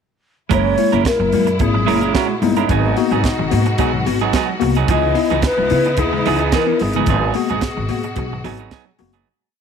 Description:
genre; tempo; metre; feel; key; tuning
disco; 110 BPM; 4/4; straight; G# minor; A4 = 444 Hz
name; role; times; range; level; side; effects
mellow wooden-headed alto flute; melody; 0.5-9.0 s; D#4 to D#5; -21 LUFS; left 2 dB; none
bell-like tine electric piano; accompaniment; 0.5-9.1 s; G#2 to F#4; -22 LUFS; left 13 dB; none
electric guitar at the edge of break-up; accompaniment; 0.5-9.3 s; E3 to A#4; -21 LUFS; right 14 dB; none
clear studio string section; sustained chords; 0.5-9.2 s; A#2 to F#4; -25 LUFS; left 1 dB; none
upright bass; bass; 0.5-9.2 s; F#1 to C#3; -20 LUFS; equal; none
tight funk drum kit; drums; 0.5-9.2 s; hi-hat, kick drum, snare drum; -22 LUFS; right 3 dB; none
room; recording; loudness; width
light reverb, studio reverb; 1960s-style stereo with parts hard left and right; -14 LUFS; side -7 dB against mid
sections
0.5-9.3 verse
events
fade-out 7.1-9.3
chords
0.5 F#9; 2.7 G#m7; 4.9 C#m9; 7.1 G#m7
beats
| 0.51 1.05 1.60 2.15 | 2.69 3.24 3.79 4.33 | 4.88 5.43 5.98 6.53 | 7.07 7.62 8.17 8.72

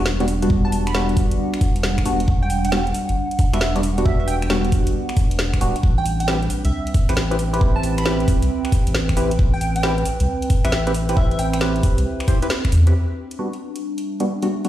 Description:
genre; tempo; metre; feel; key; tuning
UK garage, two-step garage; 135 BPM; 4/4; swing 66% on 16ths; E minor; A4 = 440 Hz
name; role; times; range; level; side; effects
percussive organ stab; stabs; 0.0-14.7 s; G3 to C5; -24 LUFS; right 1 dB; chorus, phaser, tape echo
saturated sub bass; bass; 0.0-12.9 s; D1 to E2; -20 LUFS; equal; tube saturation
warbly tape-like pad; texture; 0.0-14.7 s; G3 to G5; -28 LUFS; right 1 dB; chorus, built-in reverb, sidechain pumping
garage drum kit; drums; 0.1-14.7 s; finger snaps, hi-hat, snare drum; -27 LUFS; equal; none
electronic kick drum; drums; 0.5-12.7 s; none; -18 LUFS; equal; none
glassy wavetable pluck; melody; 0.6-11.6 s; E5 to B5; -28 LUFS; right 2 dB; chorus, tape echo
room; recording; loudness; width
light reverb; played on a big sound system in a bare room, stone room reverb; -17 LUFS; side -13 dB against mid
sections
0.0-12.9 A section; 12.9-14.7 B section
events
band accent 12.5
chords
0.0 Em9; 5.8 Am9; 12.9 Em9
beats
0.06 | 0.50 0.94 1.39 1.83 | 2.28 2.72 3.17 3.61 | 4.06 4.50 4.95 5.39 | 5.83 6.28 6.72 7.17 | 7.61 8.06 8.50 8.95 | 9.39 9.83 10.28 10.72 | 11.17 11.61 12.06 12.50 | 12.95 13.39 13.83 14.28

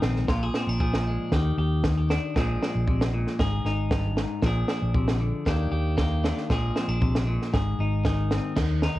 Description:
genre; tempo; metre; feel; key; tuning
highlife guitar band; 116 BPM; 4/4; straight; Bb mixolydian; A4 = 436 Hz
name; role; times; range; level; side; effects
clean electric guitar; accompaniment; 0.0-9.0 s; G2 to Ab4; -28 LUFS; left 2 dB; none
fingered electric bass; bass; 0.0-9.0 s; Ab1 to Eb2; -26 LUFS; equal; none
compact cocktail drum kit; drums; 0.0-8.9 s; crash cymbal, kick drum, snare drum; -27 LUFS; right 1 dB; cassette tape
room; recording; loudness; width
small room ambience; home recording on cassette; -23 LUFS; side -16 dB against mid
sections
0.0-8.6 A section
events
none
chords
0.3 Bb7; 1.3 Ebmaj7; 2.4 Bb7; 3.4 Ab5; 4.4 Bb7; 5.5 Ebmaj7; 6.5 Bb7; 7.5 Ab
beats
| 0.29 0.81 1.32 1.84 | 2.36 2.87 3.39 3.91 | 4.42 4.94 5.46 5.98 | 6.49 7.01 7.53 8.04 | 8.56

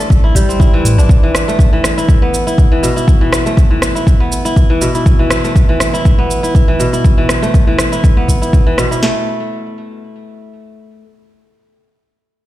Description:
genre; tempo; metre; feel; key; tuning
afro house; 121 BPM; 4/4; swing 55% on 16ths; unclear; A4 = 437 Hz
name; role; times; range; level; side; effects
kora; arpeggios; 0.0-11.0 s; B2 to A4; -16 LUFS; equal; vintage 12-bit sampler grit, sidechain pumping, ping-pong delay
afro-pop drum kit; drums; 0.0-9.0 s; hi-hat, rim click, shaker; -20 LUFS; right 1 dB; none
warm sub bass; bass; 0.1-1.1 s; A1 to A2; -11 LUFS; equal; sidechain pumping
afro-pop drum kit; drums; 0.1-9.2 s; kick drum, snare drum; -10 LUFS; equal; none
room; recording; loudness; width
little or no reverb; played on a big sound system in a bare room, stone room reverb; -9 LUFS; side -15 dB against mid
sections
0.0-9.0 A section; 9.0-12.5 B section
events
none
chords
0.0 Am7; 1.1 E5; 9.0 N.C.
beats
0.10 0.60 | 1.09 1.59 2.08 2.58 | 3.08 3.57 4.07 4.56 | 5.06 5.55 6.05 6.55 | 7.04 7.54 8.03 8.53 | 9.03 9.52 10.02 10.51 | 11.01

